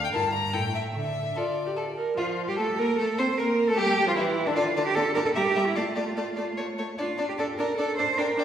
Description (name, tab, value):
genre	quick classical-period movement for string quartet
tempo	150 BPM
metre	3/4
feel	straight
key	D minor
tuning	A4 = 441 Hz
part	rich violin	melody	0.0-8.4 s	D4 to Bb5	-32 LUFS	left 4 dB	none
part	rich cello	bass	0.0-8.4 s	G2 to C5	-27 LUFS	right 3 dB	none
part	rich violin	second line	0.1-8.4 s	D4 to E5	-31 LUFS	left 2 dB	none
part	rich viola	accompaniment	0.1-8.4 s	D3 to Bb4	-29 LUFS	right 1 dB	none
room	wet recital hall reverb, RT60 1.7 s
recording	recorded in a church or concert hall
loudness	-24 LUFS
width	side -9 dB against mid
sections	0.0-2.2 A section; 2.2-8.4 B section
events	none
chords	0.1 Edim/G; 0.5 A5; 0.9 Dm; 2.2 Fadd11; 3.4 Gm; 4.6 Dm; 5.4 Em/G; 5.8 Dm/A; 6.6 N.C.; 7.0 Dm